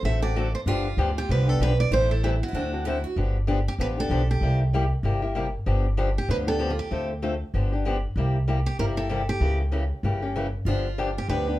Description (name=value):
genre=acoustic string swing (jazz manouche)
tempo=192 BPM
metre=4/4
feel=swing 58% on 8ths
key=G mixolydian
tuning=A4 = 440 Hz
part: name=picked steel-string acoustic guitar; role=melody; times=0.0-11.6 s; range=F4 to E5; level=-29 LUFS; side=right 3 dB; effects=plate reverb
part: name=picked steel-string acoustic guitar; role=second line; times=0.0-3.2, 10.7-11.6 s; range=D4 to A4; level=-36 LUFS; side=right 3 dB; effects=none
part: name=picked old ladder-braced acoustic guitar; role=accompaniment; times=0.0-11.6 s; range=C3 to A4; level=-28 LUFS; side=left 3 dB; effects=none
part: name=upright bass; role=bass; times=0.0-11.6 s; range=G1 to D2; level=-25 LUFS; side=equal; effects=none
room=wet studio ambience, RT60 0.5 s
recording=heard from further back in the room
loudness=-22 LUFS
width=side -15 dB against mid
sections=0.0-3.2 A section; 3.2-11.6 A section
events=none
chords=0.0 D7; 0.7 G7; 1.9 Am7; 2.5 D7; 3.2 G7; 4.4 C7; 5.7 G7; 6.9 Dm7; 7.5 G7; 8.2 C7; 9.4 C#dim7; 10.7 G7